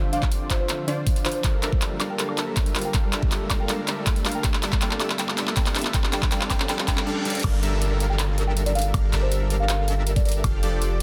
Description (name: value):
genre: future bass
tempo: 160 BPM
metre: 4/4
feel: half-time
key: G dorian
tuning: A4 = 440 Hz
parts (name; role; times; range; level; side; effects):
- soft round pluck; accompaniment; 0.0-1.4 s; D3 to C5; -38 LUFS; equal; none
- airy breathy pad; sustained chords; 0.1-7.1 s; D3 to F4; -41 LUFS; equal; chorus, phaser, sidechain pumping
- supersaw stab; riff; 0.0-11.0 s; D3 to F5; -32 LUFS; equal; sidechain pumping
- warm 808-style bass; bass; 0.0-11.0 s; D1 to G1; -26 LUFS; equal; sidechain pumping, high-pass filter
- riser, reverse cymbal and downlifter; sound effects; 1.2-10.4 s; none; -38 LUFS; equal; none
- buzzing marimba with soft mallets; melody; 0.1-10.3 s; C5 to G5; -35 LUFS; equal; sidechain pumping, digital delay
- trap drum kit; drums; 0.1-11.0 s; crash cymbal, handclaps, hi-hat, woodblock; -30 LUFS; equal; none
- electronic kick drum; drums; 0.2-10.5 s; none; -26 LUFS; equal; none
- concert harp; arpeggios; 1.4-11.0 s; F4 to C5; -38 LUFS; equal; sidechain pumping, dub echo
room: light reverb, digital ambience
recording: dense, heavily limited modern master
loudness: -24 LUFS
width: mono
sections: 0.0-7.4 A section; 7.4-11.0 B section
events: build-up 0.0-7.4; drum fill 0.0-7.1, 7.3; riser 1.2-7.4; reverse cymbal 6.7-7.4; drop 7.4-11.0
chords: 0.0 Dm7; 1.4 Gm9; 4.4 F69; 5.9 Dm7; 7.4 Gm9; 10.4 F69